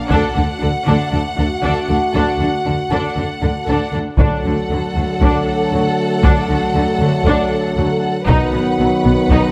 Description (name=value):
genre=cinematic, epic orchestral film score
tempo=117 BPM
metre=4/4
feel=straight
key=D major from 4.2 s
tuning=A4 = 440 Hz
part: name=rich symphonic violin section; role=melody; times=0.0-9.5 s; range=F5 to F#5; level=-27 LUFS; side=equal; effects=none
part: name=mellow French horn section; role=sustained chords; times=0.0-9.5 s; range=A3 to F#4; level=-26 LUFS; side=equal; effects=none
part: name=warm symphonic violin section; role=second line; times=0.1-9.5 s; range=A4 to B4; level=-27 LUFS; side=equal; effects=none
part: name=rich studio viola section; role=accompaniment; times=0.1-9.5 s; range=F#3 to D#4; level=-25 LUFS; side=equal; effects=none
part: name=rich symphonic double bass section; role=bass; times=0.1-9.4 s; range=B1 to D2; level=-24 LUFS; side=equal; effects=none
part: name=warm symphonic cello section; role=bass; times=0.1-9.4 s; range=B2 to D3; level=-24 LUFS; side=equal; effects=none
part: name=taiko ensemble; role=drums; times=0.1-1.1, 4.2-9.5 s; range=none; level=-20 LUFS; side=equal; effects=none
part: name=bright trombone section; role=sustained chords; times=4.2-9.5 s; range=D3 to F#3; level=-23 LUFS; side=equal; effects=none
room=light reverb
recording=close, detailed microphones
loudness=-16 LUFS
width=mono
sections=0.0-4.2 A section; 4.2-9.5 B section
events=none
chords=0.1 D; 8.3 B